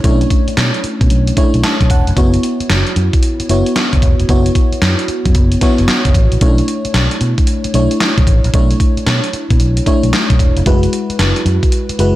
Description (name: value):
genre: R&B, new jack swing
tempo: 113 BPM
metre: 4/4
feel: swing 64% on 16ths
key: B dorian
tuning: A4 = 438 Hz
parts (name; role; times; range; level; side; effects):
- FM electric piano with soft pad layer; accompaniment; 0.0-12.2 s; G#3 to A5; -17 LUFS; equal; chorus
- fingered electric bass; bass; 0.0-12.1 s; E1 to B2; -15 LUFS; equal; none
- gated 80s digital drum machine; drums; 0.0-12.1 s; handclaps, hi-hat, kick drum, snare drum; -14 LUFS; equal; gated reverb, gated reverb snare
room: little or no reverb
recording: none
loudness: -11 LUFS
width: side -15 dB against mid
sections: 0.0-12.2 A section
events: FM electric piano fill 1.4-2.2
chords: 0.0 Bm11; 2.2 F#7sus4; 6.4 Bm11; 10.7 F#9sus4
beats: | 0.04 0.57 1.10 1.63 | 2.16 2.69 3.23 3.76 | 4.29 4.82 5.35 5.88 | 6.41 6.94 7.47 8.01 | 8.54 9.07 9.60 10.13 | 10.66 11.19 11.72